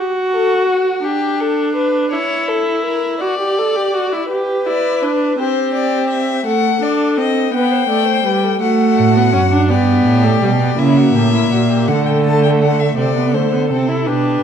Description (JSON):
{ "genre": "classical, baroque-style fugue for string quartet", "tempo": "55 BPM (dotted quarters)", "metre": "6/8", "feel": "straight", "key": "G major", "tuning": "A4 = 443 Hz", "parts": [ { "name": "rich viola", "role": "accompaniment", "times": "0.0-14.4 s", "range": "G3 to A4", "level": "-16 LUFS", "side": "right 1 dB", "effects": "none" }, { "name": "dark violin", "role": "second line", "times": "0.3-14.4 s", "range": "E4 to D5", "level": "-20 LUFS", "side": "left 3 dB", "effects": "none" }, { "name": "warm violin", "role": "melody", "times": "4.7-14.4 s", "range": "A4 to A5", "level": "-20 LUFS", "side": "left 9 dB", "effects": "none" }, { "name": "rich cello", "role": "bass", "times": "9.0-14.4 s", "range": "F#2 to D3", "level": "-16 LUFS", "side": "right 4 dB", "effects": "none" } ], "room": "wet recital hall reverb, RT60 1.5 s", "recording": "dark, warm production", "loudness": "-13 LUFS", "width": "side -8 dB against mid", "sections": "0.0-4.3 A section; 4.3-13.0 B section; 13.0-14.4 C section", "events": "none", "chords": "0.0 F#m; 1.0 Gadd9/D; 2.1 A#dim/E; 3.2 D/F#; 4.3 G; 5.4 Cadd9; 6.5 F#dim7/A; 7.5 G; 8.6 D/A; 9.7 Gadd9; 10.8 C#dim7; 11.9 D; 13.0 D5/C", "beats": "1.04 | 2.12 3.21 | 4.30 5.38 | 6.46 7.54 | 8.61 9.69 | 10.78 11.87 | 12.97 14.06" }